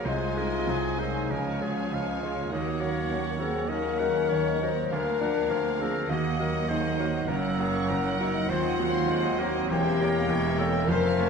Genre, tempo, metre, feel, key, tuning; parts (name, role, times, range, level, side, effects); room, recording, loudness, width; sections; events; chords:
classical; 100 BPM; 4/4; rubato; A4 = 445 Hz
clear grand piano; melody; 0.0-11.3 s; E1 to C#5; -30 LUFS; right 1 dB
warm studio violin section; melody; 0.0-11.3 s; F5 to Ab5; -42 LUFS; left 4 dB
bright clarinet; second line; 0.0-11.3 s; F3 to Eb4; -36 LUFS; equal
clear oboe; second line; 0.0-11.3 s; Ab4 to Gb5; -37 LUFS; right 2 dB
mellow hollow flute section; second line; 0.0-11.3 s; Db5 to Ab5; -38 LUFS; left 2 dB
rich studio violin section; second line; 0.0-11.3 s; Bb4 to Db6; -38 LUFS; left 2 dB
rich studio viola section; accompaniment; 0.0-11.3 s; F3 to C4; -38 LUFS; right 1 dB
warm bassoon; accompaniment; 0.0-11.3 s; Gb3 to D4; -38 LUFS; equal
mellow French horn section; sustained chords; 0.0-11.3 s; Db4 to C5; -30 LUFS; left 4 dB
rich studio double bass section; bass; 0.0-11.3 s; E1 to Eb2; -38 LUFS; right 4 dB
warm studio cello section; bass; 0.0-11.3 s; D2 to Db3; -37 LUFS; right 4 dB
wet recital hall reverb, RT60 1.5 s; nothing above 10.8 kHz; -24 LUFS; side -5 dB against mid
0.0-11.3 A section
0.1 Ab/C; 1.3 Db; 2.5 Ebm7; 4.9 Bb/D; 6.1 Ebm; 7.3 Gb; 8.5 Cdim/Eb; 9.7 Edim7